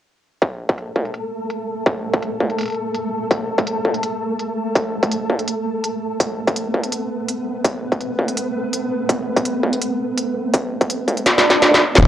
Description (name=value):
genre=half-time drum and bass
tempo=166 BPM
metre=4/4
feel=half-time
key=unclear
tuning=A4 = 445 Hz
part: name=electronic kick drum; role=drums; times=0.4-12.1 s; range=none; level=-20 LUFS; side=equal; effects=distortion, high-pass filter on kick, studio reverb, cassette tape
part: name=industrial drum kit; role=drums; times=0.4-12.1 s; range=hi-hat, snare drum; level=-17 LUFS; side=equal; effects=low-pass filter on hats, studio reverb, cassette tape, low-pass filter on snare
part: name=flickering grainy texture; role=texture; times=0.8-12.0 s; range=A3 to A4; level=-23 LUFS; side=right 1 dB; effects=built-in reverb, cassette tape
part: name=swell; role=sound effects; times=11.4-12.0 s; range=none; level=-17 LUFS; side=right 2 dB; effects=none
part: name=phased detuned saw bass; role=bass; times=12.0-12.1 s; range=D1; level=-10 LUFS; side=equal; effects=phaser
room=light reverb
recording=home recording on cassette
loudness=-18 LUFS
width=side -11 dB against mid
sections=0.4-12.0 A section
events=drum fill 11.3-12.0; swell 11.4-12.0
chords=0.4 Asus2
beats=| 0.42 0.78 1.14 1.50 | 1.86 2.23 2.59 2.95 | 3.31 3.67 4.03 4.39 | 4.75 5.12 5.48 5.84 | 6.20 6.56 6.92 7.29 | 7.65 8.01 8.37 8.73 | 9.09 9.45 9.81 10.18 | 10.54 10.90 11.26 11.62 | 11.98